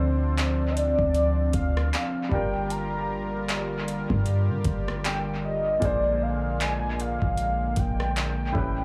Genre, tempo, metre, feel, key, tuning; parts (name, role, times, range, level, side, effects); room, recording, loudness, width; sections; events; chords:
contemporary R&B; 77 BPM; 4/4; swing 58% on 16ths; G minor; A4 = 443 Hz
warm velvety synth lead; melody; 0.0-8.8 s; C5 to Bb5; -31 LUFS; equal; chorus, analog delay
warm baby grand piano; accompaniment; 0.0-8.8 s; A2 to C5; -36 LUFS; equal; analog delay
warm analog pad; sustained chords; 0.0-8.8 s; D3 to Bb4; -33 LUFS; equal; chorus
clean 808-style bass; bass; 0.0-8.8 s; G1 to D3; -30 LUFS; equal
booming analog drum machine; drums; 0.4-8.8 s; handclaps, hi-hat, kick drum, rim click; -33 LUFS; equal; overdrive, analog delay
light reverb, digital ambience; echo-heavy mix, small room reverb; -26 LUFS; mono
0.0-8.8 A section
0.0 Dm7; 2.3 Gm7; 5.8 Bb7